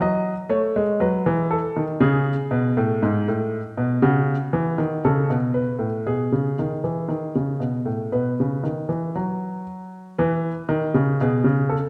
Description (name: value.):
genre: classical, baroque-style two-part invention for grand piano.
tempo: 59 BPM.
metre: 4/4.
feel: straight.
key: E major.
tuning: A4 = 442 Hz.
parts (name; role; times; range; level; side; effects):
warm baby grand piano; solo; 0.0-11.9 s; G#2 to D#5; -22 LUFS; equal; none.
room: moderate scoring stage reverb, RT60 1.6 s.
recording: none.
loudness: -22 LUFS.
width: mono.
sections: 0.0-10.2 A section; 10.2-11.9 B section.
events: none.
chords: 0.0 D#dim/F#; 2.0 A; 4.0 F#m/C#; 6.1 E/B; 8.1 B; 10.2 E.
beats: 0.02 1.02 | 2.02 3.03 4.03 5.05 | 6.07 7.10 8.13 9.16 | 10.19 11.21.